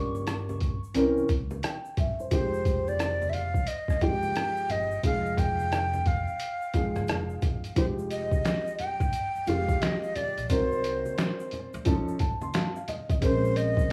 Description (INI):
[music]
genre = hip hop, jazz-hop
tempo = 88 BPM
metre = 4/4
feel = swing 65% on 16ths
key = F minor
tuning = A4 = 441 Hz
[part]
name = dark baby grand piano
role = accompaniment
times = 0.0-13.9 s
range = E3 to C6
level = -33 LUFS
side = equal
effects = none
[part]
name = upright bass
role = bass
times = 0.0-13.8 s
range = F1 to D2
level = -36 LUFS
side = equal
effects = none
[part]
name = congas and egg shaker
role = percussion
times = 0.1-13.9 s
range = none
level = -44 LUFS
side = equal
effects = none
[part]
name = lo-fi sampler-style drum kit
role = drums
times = 0.3-13.9 s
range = hi-hat, kick drum, rim click, snare drum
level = -31 LUFS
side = equal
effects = overdrive, cassette tape
[part]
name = breathy mellow silver concert flute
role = melody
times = 2.3-13.9 s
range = C5 to G5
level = -33 LUFS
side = equal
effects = cassette tape, tape echo
[sound]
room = small room ambience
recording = home recording on cassette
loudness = -28 LUFS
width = mono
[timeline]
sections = 0.0-7.8 A section; 7.8-13.9 B section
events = grand piano fill 11.9-13.2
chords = 0.0 Gm7b5; 0.9 C7b9; 2.3 Fm9; 10.5 Cm7b5; 11.9 F7b13; 13.2 Bbm9